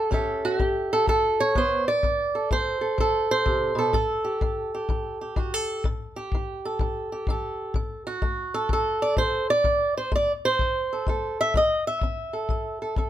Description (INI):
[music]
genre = acoustic country blues, solo or duo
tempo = 126 BPM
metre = 4/4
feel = swing 65% on 8ths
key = unclear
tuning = A4 = 436 Hz
[part]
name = fingerpicked swing-style acoustic guitar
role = melody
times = 0.0-13.1 s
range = A2 to E5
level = -23 LUFS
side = right 1 dB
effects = none
[part]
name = kick drum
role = drums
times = 0.1-13.1 s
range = none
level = -28 LUFS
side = left 2 dB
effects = none
[sound]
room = light reverb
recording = none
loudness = -22 LUFS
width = side -12 dB against mid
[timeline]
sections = 0.1-13.1 A section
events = none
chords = 0.1 A7; 2.0 D5; 3.9 A5; 7.7 D7; 11.5 A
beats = | 0.13 0.61 1.08 1.56 | 2.04 2.51 2.99 3.46 | 3.94 4.42 4.89 5.37 | 5.84 6.32 6.79 7.27 | 7.75 8.22 8.70 9.17 | 9.65 10.12 10.60 11.07 | 11.55 12.02 12.50 12.97